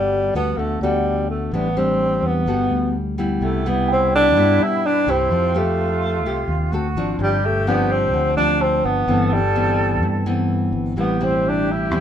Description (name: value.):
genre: bossa nova.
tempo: 127 BPM.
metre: 4/4.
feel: straight.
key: G major, C major from 3.4 s.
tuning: A4 = 440 Hz.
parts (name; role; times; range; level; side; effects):
breathy tenor saxophone; melody; 0.0-12.0 s; G3 to E4; -20 LUFS; equal; none.
nylon-string guitar; accompaniment; 0.0-12.0 s; G2 to A4; -23 LUFS; left 2 dB; none.
fingered electric bass; bass; 0.0-12.0 s; G1 to G2; -23 LUFS; equal; none.
silver concert flute; second line; 3.4-12.0 s; E4 to A4; -27 LUFS; right 3 dB; none.
mellow tine electric piano; accompaniment; 3.9-5.3, 8.6-9.1 s; G5 to A5; -31 LUFS; right 5 dB; none.
room: moderate studio reverb, RT60 0.7 s.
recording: minimal, uncompressed stereo recording.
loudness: -17 LUFS.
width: side -9 dB against mid.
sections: 0.0-3.4 A section; 3.4-12.0 B section.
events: none.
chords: 0.0 Gmaj9; 1.5 Am7; 2.5 Gmaj9; 3.4 Cmaj7; 5.3 Fmaj9; 6.7 D7; 7.2 G7sus4; 9.1 Cmaj7/G; 11.0 Am7.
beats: 0.11 0.58 1.05 | 1.53 2.00 2.47 2.94 | 3.42 3.89 4.36 4.83 | 5.31 5.78 6.25 6.72 | 7.19 7.67 8.14 8.61 | 9.08 9.55 10.03 10.50 | 10.97 11.44 11.91.